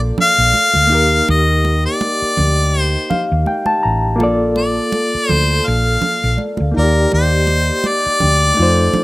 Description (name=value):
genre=lush 1970s-style soul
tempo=82 BPM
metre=4/4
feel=swing 54% on 16ths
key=unclear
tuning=A4 = 440 Hz
part: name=barky reed electric piano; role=accompaniment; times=0.0-9.0 s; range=A3 to Bb5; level=-19 LUFS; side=left 1 dB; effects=overdrive, fast tremolo
part: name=mellow French horn section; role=sustained chords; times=0.0-9.0 s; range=F3 to D5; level=-26 LUFS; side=right 1 dB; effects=none
part: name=hollow-body short-scale fingered electric bass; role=bass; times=0.0-9.0 s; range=A1 to F2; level=-16 LUFS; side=equal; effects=none
part: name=clear harmonica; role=melody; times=0.2-9.0 s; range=Bb4 to F5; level=-15 LUFS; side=left 1 dB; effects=none
part: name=congas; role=percussion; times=0.2-9.0 s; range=none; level=-23 LUFS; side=right 4 dB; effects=none
part: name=celesta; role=texture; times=6.4-8.9 s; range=D5 to G5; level=-31 LUFS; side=left 3 dB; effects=none
room=studio ambience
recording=rough home demo mix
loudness=-12 LUFS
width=side -20 dB against mid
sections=0.0-9.0 A section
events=reed electric piano fill 2.7-4.2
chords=0.0 Bbmaj7; 0.9 Ebmaj7; 4.2 Bbmaj7; 6.8 Ebmaj7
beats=0.55 | 1.28 2.01 2.74 3.47 | 4.21 4.94 5.67 6.39 | 7.12 7.85 8.58